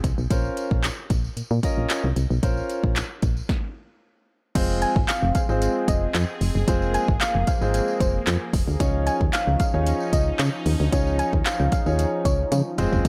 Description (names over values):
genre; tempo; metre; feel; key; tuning
dance-pop; 113 BPM; 4/4; straight; F minor; A4 = 440 Hz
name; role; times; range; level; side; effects
solid FM bass; bass; 0.0-13.1 s; F1 to Db3; -26 LUFS; equal; sidechain pumping
deep house drum kit; drums; 0.0-13.1 s; crash cymbal, handclaps, hi-hat, kick drum, snare drum, toms; -27 LUFS; equal; overdrive
tambourine; percussion; 0.0-13.1 s; none; -43 LUFS; equal; none
warm baby grand piano; accompaniment; 0.3-13.1 s; Ab3 to Eb5; -30 LUFS; equal; sidechain pumping
sweeping resonant pad; sustained chords; 4.6-13.1 s; F3 to C5; -34 LUFS; equal; chorus, sidechain pumping
soft round pluck; melody; 4.8-12.6 s; C5 to Ab5; -30 LUFS; equal; chorus, sidechain pumping, tape echo
room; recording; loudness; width
digital ambience; none; -23 LUFS; mono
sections
0.0-4.6 A section; 4.6-13.1 B section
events
stop 3.5-4.6; drop 4.6-13.1; drum fill 12.5-13.0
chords
0.3 Bbmadd9; 4.6 Fm; 8.8 Dbadd9